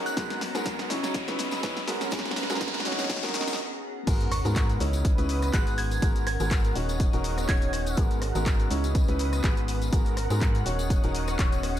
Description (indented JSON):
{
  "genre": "piano house",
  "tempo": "123 BPM",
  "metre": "4/4",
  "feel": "swing 55% on 16ths",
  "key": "G# minor",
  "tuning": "A4 = 439 Hz",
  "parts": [
    { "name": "analog string pad", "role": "sustained chords", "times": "0.0-11.8 s", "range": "B3 to F#6", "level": "-38 LUFS", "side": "right 1 dB", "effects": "ensemble chorus, sidechain pumping" },
    { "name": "clear grand piano", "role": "riff", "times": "0.0-11.8 s", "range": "G#2 to C#5", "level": "-32 LUFS", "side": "left 1 dB", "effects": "vintage 12-bit sampler grit, sidechain pumping, ping-pong delay" },
    { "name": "organ-like FM bass", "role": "bass", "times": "0.0-11.8 s", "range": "D#1 to G#2", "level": "-29 LUFS", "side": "equal", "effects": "sidechain pumping, high-pass filter" },
    { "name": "riser and sub drop", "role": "sound effects", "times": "0.0-6.0 s", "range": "none", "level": "-35 LUFS", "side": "equal", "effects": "none" },
    { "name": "granular cloud pad", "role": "texture", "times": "0.0-11.8 s", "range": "A#5", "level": "-37 LUFS", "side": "right 1 dB", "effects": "built-in reverb, sidechain pumping" },
    { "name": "glassy synth bell", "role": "melody", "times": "0.1-0.2, 4.3-8.0 s", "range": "C#6 to G#6", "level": "-34 LUFS", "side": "right 2 dB", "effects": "chorus, ping-pong delay" },
    { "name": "punchy analog drum machine", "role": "drums", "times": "0.1-11.8 s", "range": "crash cymbal, handclaps, hi-hat, rim click, shaker, snare drum", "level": "-34 LUFS", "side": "equal", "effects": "none" },
    { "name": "tambourine", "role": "percussion", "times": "0.1-11.8 s", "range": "none", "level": "-43 LUFS", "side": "left 5 dB", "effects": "none" },
    { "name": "electronic kick drum", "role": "drums", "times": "0.2-11.5 s", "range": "none", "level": "-25 LUFS", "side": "equal", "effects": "none" }
  ],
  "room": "light reverb",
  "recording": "dark, warm production, high-pass filter",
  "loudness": "-24 LUFS",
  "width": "side -11 dB against mid",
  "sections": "0.0-4.1 A section; 4.1-11.8 B section",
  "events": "build-up 0.0-4.1; drum fill 0.0-3.6; riser 0.0-3.6; break 3.6-4.1; drop 4.1-11.8; impact 4.1-6.0",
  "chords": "0.2 G#m9; 0.9 C#m9; 1.9 G#m9; 2.9 D#m7; 4.1 G#m9; 4.8 C#m9; 5.8 G#m9; 6.8 D#m7; 8.0 G#m9; 8.7 C#m9; 9.7 G#m9; 10.7 D#m7"
}